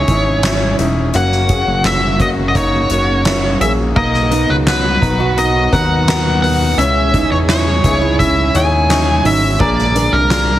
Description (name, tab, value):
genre	piano-driven pop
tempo	85 BPM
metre	4/4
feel	straight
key	B major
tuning	A4 = 441 Hz
part	nasal lead guitar with a parked wah	melody	0.0-10.6 s	A#4 to G#5	-17 LUFS	equal	overdrive
part	warm grand piano	accompaniment	0.0-10.6 s	A#2 to A#5	-19 LUFS	left 3 dB	none
part	warm studio string section	sustained chords	0.0-10.6 s	B2 to G#4	-26 LUFS	equal	none
part	fat analog bass	bass	0.0-10.6 s	E1 to E2	-17 LUFS	equal	none
part	soft-mallet drum kit	drums	0.1-10.5 s	crash cymbal, handclaps, hi-hat, kick drum, snare drum	-19 LUFS	equal	none
part	fingerpicked steel-string acoustic guitar	riff	4.0-10.5 s	A#3 to F#4	-21 LUFS	right 6 dB	none
room	light reverb, small room reverb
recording	heavily compressed radio sound, multiband compression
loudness	-12 LUFS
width	side -13 dB against mid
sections	0.0-4.0 A section; 4.0-10.6 B section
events	none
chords	0.0 C#madd9; 1.1 F#; 4.0 Bmaj7; 6.8 C#madd9; 9.6 A#7